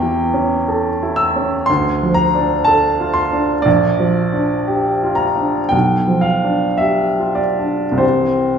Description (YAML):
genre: classical, romantic nocturne for solo piano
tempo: 46-62 BPM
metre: 4/4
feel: rubato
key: unclear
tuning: A4 = 440 Hz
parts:
  - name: clear baby grand piano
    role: solo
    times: 0.0-8.6 s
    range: Bb1 to E6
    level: -14 LUFS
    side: equal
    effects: none
room: wet recital hall reverb, RT60 1.4 s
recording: heard from further back in the room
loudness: -14 LUFS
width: side -7 dB against mid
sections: 0.0-8.6 A section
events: none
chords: 0.0 A7/E; 1.7 Dm; 3.7 Gm7/Bb; 5.7 G7/B; 8.0 C